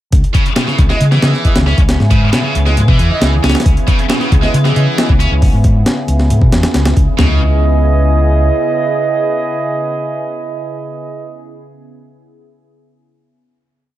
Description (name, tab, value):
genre	breakbeat, breaks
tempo	136 BPM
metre	4/4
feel	straight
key	C# minor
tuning	A4 = 444 Hz
part	phased analog pad	sustained chords	0.3-11.5 s	C#3 to G#4	-22 LUFS	left 1 dB	phaser, chorus, vintage 12-bit sampler grit, sidechain pumping
part	overdriven fingered electric bass	bass	0.1-8.5 s	C#2 to C#3	-12 LUFS	equal	none
part	breakbeat sampler-style drum kit	drums	0.1-7.3 s	hi-hat, kick drum, snare drum, toms	-13 LUFS	equal	studio reverb
part	heavy high-gain guitar	riff	0.3-7.4 s	B2 to C#4	-18 LUFS	equal	distortion, analog delay
part	mellow brass ensemble	stabs	0.9-11.5 s	E4 to D#5	-19 LUFS	right 5 dB	vintage 12-bit sampler grit, analog delay
room	little or no reverb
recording	echo-heavy mix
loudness	-10 LUFS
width	side -14 dB against mid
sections	0.1-7.2 drop; 7.2-10.7 final chord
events	drop 0.1-7.2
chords	0.1 C#m7